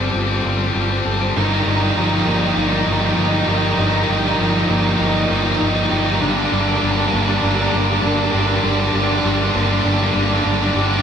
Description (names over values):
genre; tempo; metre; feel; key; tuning
post-rock; 99 BPM; 4/4; straight; G minor; A4 = 439 Hz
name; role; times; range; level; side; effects
muted studio string section; sustained chords; 0.0-11.0 s; F4 to C6; -29 LUFS; right 1 dB; none
electric guitar at the edge of break-up; arpeggios; 0.0-11.0 s; G2 to A4; -23 LUFS; left 1 dB; none
biting overdriven guitar; riff; 0.0-11.0 s; G3 to Eb4; -20 LUFS; left 3 dB; none
growling picked electric bass; bass; 0.0-11.0 s; G1; -22 LUFS; equal; overdrive
tight distorted guitar; riff; 1.4-11.0 s; G2 to Eb3; -21 LUFS; right 6 dB; distortion
room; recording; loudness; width
wet stone room reverb, RT60 1.2 s; band playing live in one room; -15 LUFS; side -8 dB against mid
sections
0.0-11.0 A section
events
build-up 0.0-11.0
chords
0.0 F/G; 1.4 Ebadd9/G; 6.2 Gm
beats
0.15 0.76 | 1.36 1.97 2.58 3.18 | 3.79 4.39 5.00 5.60 | 6.21 6.82 7.42 8.03 | 8.63 9.24 9.84 10.45